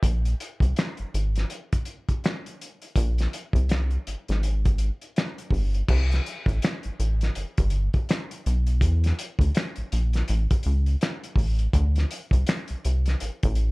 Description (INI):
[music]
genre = R&B, neo-soul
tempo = 82 BPM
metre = 4/4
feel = swing 60% on 16ths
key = unclear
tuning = A4 = 439 Hz
[part]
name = rubbery square bass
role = bass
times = 0.0-13.7 s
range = G1 to E2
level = -22 LUFS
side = equal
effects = none
[part]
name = cloth-damped thuddy drum kit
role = drums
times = 0.0-13.7 s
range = crash cymbal, finger snaps, hi-hat, kick drum, snare drum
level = -26 LUFS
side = equal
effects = none
[sound]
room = little or no reverb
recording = dark, warm production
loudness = -22 LUFS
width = side -25 dB against mid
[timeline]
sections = 0.0-5.9 A section; 5.9-13.7 B section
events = none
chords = none